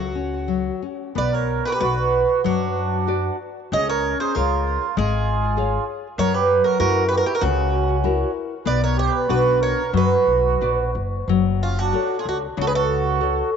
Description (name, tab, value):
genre	fado-style ballad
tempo	87-99 BPM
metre	4/4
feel	rubato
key	B harmonic minor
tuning	A4 = 443 Hz
part	picked twelve-string acoustic guitar	melody	0.0-13.5 s	E#4 to D#5	-22 LUFS	right 3 dB	tape echo
part	nylon-string guitar	accompaniment	0.0-13.6 s	C#3 to E#5	-25 LUFS	left 13 dB	none
part	upright bass	bass	0.0-13.4 s	F#1 to F#2	-24 LUFS	left 1 dB	tube saturation
part	mellow accordion	second line	1.2-13.5 s	C#4 to B4	-25 LUFS	right 9 dB	none
room	moderate spring reverb, RT60 2.7 s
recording	1960s-style stereo with parts hard left and right, nothing above 7.8 kHz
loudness	-18 LUFS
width	side -7 dB against mid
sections	0.0-1.2 A section; 1.2-11.3 B section; 11.3-13.6 A section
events	none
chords	0.0 F#5; 1.2 Bm; 3.7 C#; 6.2 F#7; 8.7 Bm; 11.3 F#m